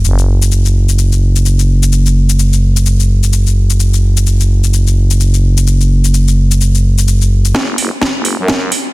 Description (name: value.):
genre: bass house.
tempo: 128 BPM.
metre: 4/4.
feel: swing 59% on 16ths.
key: unclear.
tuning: A4 = 440 Hz.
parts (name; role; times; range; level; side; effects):
growling FM bass; bass; 0.0-8.7 s; F#1 to F#2; -9 LUFS; equal; tube saturation, sidechain pumping, high-pass filter.
house drum kit; drums; 0.0-8.8 s; hi-hat, shaker, snare drum; -18 LUFS; left 2 dB; none.
electronic kick drum; drums; 7.5-8.6 s; none; -21 LUFS; equal; high-pass filter on kick.
room: digital ambience.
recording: dense, heavily limited modern master.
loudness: -9 LUFS.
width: side -20 dB against mid.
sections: 0.0-7.5 A section; 7.5-8.9 B section.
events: build-up 7.5-8.9; drum fill 7.5-8.9.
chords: none.